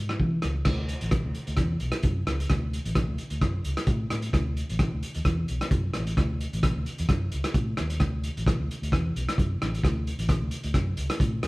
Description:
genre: highlife guitar band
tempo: 131 BPM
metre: 4/4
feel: swing 54% on 16ths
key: unclear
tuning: A4 = 440 Hz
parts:
  - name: fingered electric bass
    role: bass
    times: 0.0-11.5 s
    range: A1 to E3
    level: -29 LUFS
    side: equal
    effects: none
  - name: vintage drum kit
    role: drums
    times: 0.1-11.5 s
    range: crash cymbal, hi-hat, kick drum, rim click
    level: -26 LUFS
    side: equal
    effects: none
room: moderate stone room reverb, RT60 1.2 s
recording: band playing live in one room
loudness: -24 LUFS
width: side -22 dB against mid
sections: 0.7-11.5 A section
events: none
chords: none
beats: 0.20 | 0.66 1.12 1.58 2.04 | 2.50 2.96 3.42 3.88 | 4.33 4.79 5.25 5.71 | 6.17 6.63 7.09 7.55 | 8.01 8.46 8.92 9.38 | 9.84 10.29 10.75 11.21

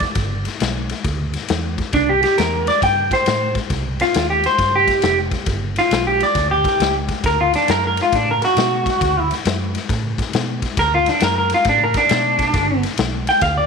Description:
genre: electric blues shuffle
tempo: 136 BPM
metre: 4/4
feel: swing 66% on 8ths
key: unclear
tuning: A4 = 440 Hz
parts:
  - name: vintage muted fingered electric bass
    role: bass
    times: 0.0-13.7 s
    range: F1 to B2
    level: -24 LUFS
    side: right 2 dB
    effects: none
  - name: raw garage drum kit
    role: drums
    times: 0.0-13.6 s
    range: kick drum, ride cymbal, snare drum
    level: -22 LUFS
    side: left 4 dB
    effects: none
  - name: electric guitar through a small old amp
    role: melody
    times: 1.9-13.7 s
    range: D4 to G5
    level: -16 LUFS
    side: equal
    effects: lush chorus
room: light reverb, studio ambience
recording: 1960s-style stereo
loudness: -15 LUFS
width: side -5 dB against mid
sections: 0.0-13.7 A section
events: clean electric guitar solo 0.0-13.7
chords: 0.0 G; 1.9 C; 3.7 Cm; 5.5 G; 7.2 D; 12.5 G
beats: | 0.17 0.61 1.05 1.49 | 1.94 2.38 2.82 3.27 | 3.71 4.15 4.59 5.04 | 5.48 5.92 6.36 6.80 | 7.25 7.69 8.13 8.57 | 9.01 9.45 9.89 10.34 | 10.78 11.22 11.66 12.10 | 12.54 12.99 13.43

